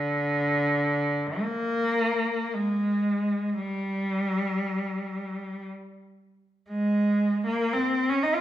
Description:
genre	classical, free, expressive piece for unaccompanied cello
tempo	41-60 BPM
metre	3/4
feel	rubato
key	Ab major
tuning	A4 = 437 Hz
part	warm cello	solo	0.0-8.4 s	D3 to F4	-24 LUFS	equal	none
room	wet recital hall reverb, RT60 1.3 s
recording	minimal, uncompressed stereo recording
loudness	-24 LUFS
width	side -12 dB against mid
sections	0.0-8.4 A section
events	none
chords	none

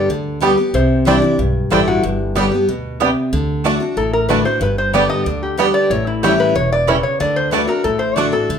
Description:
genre	bluegrass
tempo	186 BPM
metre	4/4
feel	straight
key	G major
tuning	A4 = 438 Hz
part	lap resonator guitar	melody	0.0-8.6 s	E4 to Eb5	-18 LUFS	left 1 dB	none
part	picked steel-string acoustic guitar	accompaniment	0.0-8.6 s	G2 to G4	-18 LUFS	left 2 dB	none
part	upright bass	bass	0.1-8.6 s	E1 to D2	-23 LUFS	right 1 dB	none
part	bluegrass banjo	melody	0.4-8.2 s	G3 to E4	-21 LUFS	right 4 dB	none
part	mandolin	stabs	0.4-8.3 s	A3 to A5	-21 LUFS	right 6 dB	none
room	moderate large studio reverb, RT60 0.9 s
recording	minimal, uncompressed stereo recording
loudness	-14 LUFS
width	side -7 dB against mid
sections	0.0-3.3 A section; 3.3-8.6 B section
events	none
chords	0.0 G; 0.7 Cadd9; 2.0 G; 3.3 D; 4.6 G; 5.9 A7; 7.2 D

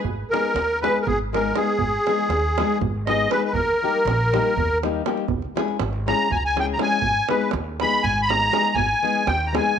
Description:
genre	balkan folk, Balkan wedding band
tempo	241 BPM (eighths)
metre	7/8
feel	straight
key	G# harmonic minor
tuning	A4 = 440 Hz
part	upright bass	bass	0.0-9.6 s	G#1 to D#2	-27 LUFS	equal	tube saturation
part	davul	percussion	0.0-9.7 s	none	-28 LUFS	right 9 dB	none
part	musette accordion	melody	0.3-9.8 s	G#4 to B5	-21 LUFS	equal	none
part	nylon-string guitar	accompaniment	0.3-9.7 s	G3 to G#4	-26 LUFS	left 10 dB	none
room	moderate echo chamber reverb, RT60 1.3 s, studio reverb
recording	1960s-style stereo with parts hard left and right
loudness	-19 LUFS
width	side -8 dB against mid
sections	0.0-9.8 A section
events	accordion solo 0.0-9.8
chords	0.0 G#m; 3.5 D#; 5.3 C#m; 7.0 G#m

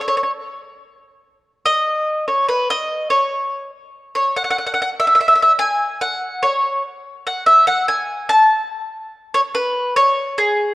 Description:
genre	calypso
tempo	144 BPM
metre	4/4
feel	straight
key	C# minor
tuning	A4 = 438 Hz
part	mandolin	solo	0.0-10.7 s	G#4 to A5	-15 LUFS	equal	none
room	moderate scoring stage reverb, RT60 2.0 s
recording	worn, warbling old tape, cassette tape, warbly pitch drift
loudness	-15 LUFS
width	side -19 dB against mid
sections	0.0-9.3 A section; 9.3-10.7 B section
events	mandolin solo 0.0-9.3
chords	none

